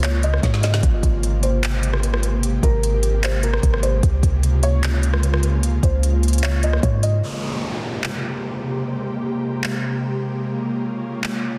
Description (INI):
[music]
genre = hip hop, atmospheric cloud-rap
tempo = 150 BPM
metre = 4/4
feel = half-time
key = Ab major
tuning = A4 = 439 Hz
[part]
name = felt-muted upright piano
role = melody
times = 0.0-7.2 s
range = Bb4 to Eb5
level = -31 LUFS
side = equal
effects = delay
[part]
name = ethereal airy pad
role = sustained chords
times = 0.0-11.6 s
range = C3 to G4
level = -28 LUFS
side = equal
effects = ensemble chorus, built-in reverb, sidechain pumping
[part]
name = clean 808-style bass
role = bass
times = 0.0-7.2 s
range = Ab1 to Ab2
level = -21 LUFS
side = equal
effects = none
[part]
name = smooth R&B drum kit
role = drums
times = 0.0-11.3 s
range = handclaps, hi-hat, kick drum, rim click, snare drum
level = -25 LUFS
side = equal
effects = soft clipping on snare
[part]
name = wind-like tuned noise texture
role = texture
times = 0.0-11.6 s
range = Ab3 to Db5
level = -39 LUFS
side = equal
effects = none
[part]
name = downlifter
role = sound effects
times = 7.2-10.4 s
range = none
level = -34 LUFS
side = equal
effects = none
[sound]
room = digital ambience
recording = dense, heavily limited modern master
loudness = -20 LUFS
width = mono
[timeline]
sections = 0.0-7.2 A section; 7.2-11.6 B section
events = drum fill 0.4-0.8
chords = 0.0 Db6; 0.8 Abmaj9; 4.0 Db6; 7.2 Abmaj9; 10.4 Db6